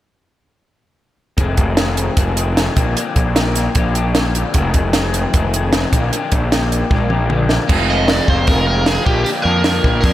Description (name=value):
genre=indie rock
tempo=153 BPM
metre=4/4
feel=straight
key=F dorian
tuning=A4 = 445 Hz
part: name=electric guitar through a small old amp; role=riff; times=1.4-10.1 s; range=F2 to Ab4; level=-21 LUFS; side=left 5 dB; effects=ensemble chorus
part: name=fuzz picked electric bass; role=bass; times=1.4-10.1 s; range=F1 to F2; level=-18 LUFS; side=equal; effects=overdrive
part: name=compact cocktail drum kit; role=drums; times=1.4-10.1 s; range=crash cymbal, hi-hat, kick drum, snare drum, toms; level=-17 LUFS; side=equal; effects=none
part: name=overdriven semi-hollow guitar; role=riff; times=7.7-10.1 s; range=F3 to F4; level=-23 LUFS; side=right 6 dB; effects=lush chorus
part: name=biting overdriven guitar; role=melody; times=7.9-10.1 s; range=G4 to Eb5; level=-18 LUFS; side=equal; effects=none
room=light reverb, small room ambience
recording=none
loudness=-13 LUFS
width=side -14 dB against mid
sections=1.4-7.7 A section; 7.7-10.1 B section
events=drum fill 6.9-7.7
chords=1.4 Fm7; 2.8 Bb6; 4.6 Fm7; 5.9 Bb6; 7.7 Fm7; 9.1 Bb6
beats=| 1.39 1.79 2.18 2.58 | 2.97 3.37 3.76 4.16 | 4.55 4.95 5.34 5.73 | 6.13 6.52 6.91 7.30 | 7.70 8.09 8.48 8.87 | 9.26 9.65 10.04